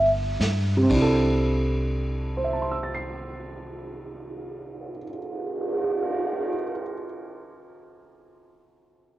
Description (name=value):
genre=jazz ballad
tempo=40 BPM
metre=4/4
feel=swing 67% on 8ths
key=C major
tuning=A4 = 441 Hz
part: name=warm baby grand piano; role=accompaniment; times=0.0-9.2 s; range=C3 to C7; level=-25 LUFS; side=right 1 dB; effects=cassette tape
part: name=upright bass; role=bass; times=0.0-5.0 s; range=G1 to G2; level=-27 LUFS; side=equal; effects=none
part: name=vintage brush drum kit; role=drums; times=0.4-6.5 s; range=cymbal swell, kick drum, ride cymbal, snare drum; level=-30 LUFS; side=right 2 dB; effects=cassette tape
room=light reverb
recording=home recording on cassette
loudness=-23 LUFS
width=side -15 dB against mid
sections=0.9-6.8 A section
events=none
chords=0.0 C69